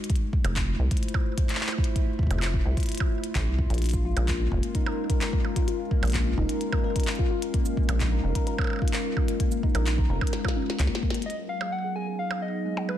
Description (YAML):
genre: IDM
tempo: 129 BPM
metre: 4/4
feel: straight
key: unclear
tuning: A4 = 440 Hz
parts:
  - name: warbly tape-like pad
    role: sustained chords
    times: 0.0-13.0 s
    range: Gb3 to F5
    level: -32 LUFS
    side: left 1 dB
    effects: chorus, built-in reverb
  - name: glitchy drum kit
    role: drums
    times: 0.0-13.0 s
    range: cabasa, handclaps, hi-hat, percussion blips, snare drum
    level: -33 LUFS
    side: right 1 dB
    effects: studio reverb, digital delay
  - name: electronic kick drum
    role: drums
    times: 0.1-11.1 s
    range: none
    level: -26 LUFS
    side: equal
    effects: studio reverb
  - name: deep acid bass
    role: bass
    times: 0.4-10.9 s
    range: F1 to Db2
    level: -25 LUFS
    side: equal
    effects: tube saturation
  - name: harp-like synth pluck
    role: arpeggios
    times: 3.9-13.0 s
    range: Ab3 to Bb4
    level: -32 LUFS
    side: left 3 dB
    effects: chorus, phaser, cassette tape, tape echo
  - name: soft struck synth lead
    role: melody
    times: 11.3-13.0 s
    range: Cb5 to Ab5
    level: -32 LUFS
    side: left 2 dB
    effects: chorus, tremolo, digital delay
room: digital ambience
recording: dense, heavily limited modern master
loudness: -24 LUFS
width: side -11 dB against mid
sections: 0.0-11.3 A section; 11.3-13.0 B section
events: drum fill 10.3-11.3; band accent 11.1; filter sweep on synth pluck 11.3-13.0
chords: 0.1 Fmaj7; 3.8 Bbm7; 11.3 Abm7